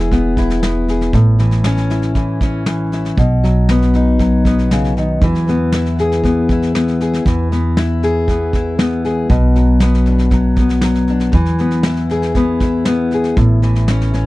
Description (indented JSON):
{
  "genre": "acoustic folk duo or small band",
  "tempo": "118 BPM",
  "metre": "4/4",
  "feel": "straight",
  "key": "unclear",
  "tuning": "A4 = 441 Hz",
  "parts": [
    { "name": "fingerpicked steel-string acoustic guitar", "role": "accompaniment", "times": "0.0-14.3 s", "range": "A2 to G#4", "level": "-15 LUFS", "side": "left 2 dB", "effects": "none" },
    { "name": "upright bass", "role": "bass", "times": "0.0-14.3 s", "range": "E1 to E2", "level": "-17 LUFS", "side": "right 1 dB", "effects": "none" },
    { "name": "soft brush drum kit", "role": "drums", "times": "0.1-14.2 s", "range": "kick drum, snare drum", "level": "-20 LUFS", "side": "equal", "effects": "none" }
  ],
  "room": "little or no reverb",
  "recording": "dry, close 1970s-style studio recording",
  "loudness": "-12 LUFS",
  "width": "side -18 dB against mid",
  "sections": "0.0-14.3 A section",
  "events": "none",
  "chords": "0.0 E; 1.1 A; 3.2 B; 5.2 E; 9.3 Bm; 11.3 E; 13.4 A"
}